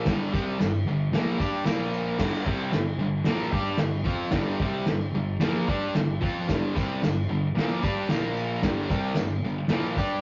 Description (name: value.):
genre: garage rock duo or trio.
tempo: 112 BPM.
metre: 4/4.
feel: straight.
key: G minor.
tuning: A4 = 440 Hz.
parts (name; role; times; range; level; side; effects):
fuzz guitar; riff; 0.0-10.2 s; G2 to G4; -29 LUFS; equal; distortion.
cloth-damped thuddy drum kit; drums; 0.1-10.1 s; crash cymbal, kick drum, snare drum; -30 LUFS; equal; none.
tambourine; percussion; 0.1-2.1, 6.5-10.1 s; none; -56 LUFS; equal; none.
room: moderate stone room reverb, RT60 1.1 s.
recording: rough rehearsal-room recording, tube saturation, cassette tape, nothing above 7.5 kHz.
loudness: -26 LUFS.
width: mono.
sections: 0.0-2.2 A section; 2.2-10.2 A section.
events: none.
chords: 0.1 Gm; 1.7 Bb5; 2.2 Gm; 8.1 Bb5; 8.6 Gm.